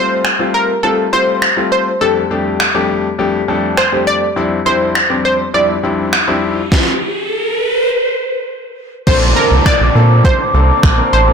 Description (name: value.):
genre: dance-pop.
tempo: 102 BPM.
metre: 4/4.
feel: straight.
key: unclear.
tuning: A4 = 441 Hz.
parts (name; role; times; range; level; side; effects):
analog pluck; melody; 0.0-11.3 s; A4 to D5; -15 LUFS; equal; chorus, ping-pong delay.
clear concert grand piano; accompaniment; 0.0-11.3 s; F2 to Bb4; -17 LUFS; left 3 dB; sidechain pumping.
smooth R&B drum kit; drums; 0.2-11.0 s; crash cymbal, finger snaps, kick drum, snare drum; -14 LUFS; equal; overdrive, soft clipping on snare.
riser and downlifter; sound effects; 5.7-11.3 s; none; -19 LUFS; right 1 dB; none.
mellow hollow large flute ensemble; sustained chords; 9.1-11.3 s; C5 to D6; -17 LUFS; right 1 dB; sidechain pumping.
round analog bass; bass; 9.1-11.3 s; A1 to Bb2; -11 LUFS; right 1 dB; sidechain pumping.
room: moderate plate reverb, RT60 1.8 s, digital ambience.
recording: blown-out, overdriven recording, overdrive.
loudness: -11 LUFS.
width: side -6 dB against mid.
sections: 0.0-9.1 A section; 9.1-11.3 B section.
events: riser 5.7-9.1; stop 6.7-9.1.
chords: 0.0 Fadd9; 2.0 Gsus2/F; 4.4 Cadd9/F; 9.1 Bbmaj9.